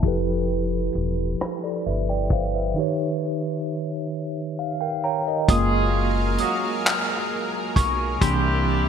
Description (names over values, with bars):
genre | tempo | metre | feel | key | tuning
slow six-eight R&B | 44 BPM (dotted quarters) | 6/8 | straight | unclear | A4 = 440 Hz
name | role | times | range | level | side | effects
mellow tine electric piano | accompaniment | 0.0-8.9 s | D#3 to E#6 | -24 LUFS | right 1 dB | medium stereo tremolo
upright bass | bass | 0.0-8.9 s | E1 to C2 | -25 LUFS | equal | none
warm soul drum kit | drums | 0.0-8.4 s | handclaps, hi-hat, kick drum, rim click | -22 LUFS | equal | gated reverb
lush unison pad | sustained chords | 5.5-8.9 s | C3 to E#5 | -30 LUFS | equal | chorus
mellow horn section | stabs | 5.5-8.9 s | A#3 to G#4 | -28 LUFS | equal | none
room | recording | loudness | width
moderate lush hall reverb, RT60 2.9 s | bright 1980s-style digital production, low-pass filter | -21 LUFS | side -8 dB against mid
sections
0.0-5.5 A section; 5.5-8.9 B section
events
filter sweep 0.0-5.5; tine electric piano fill 4.1-5.5; tine electric piano solo 5.5-8.9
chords
0.0 Fmaj9#11; 2.8 D#7; 5.5 F#maj9; 8.2 C9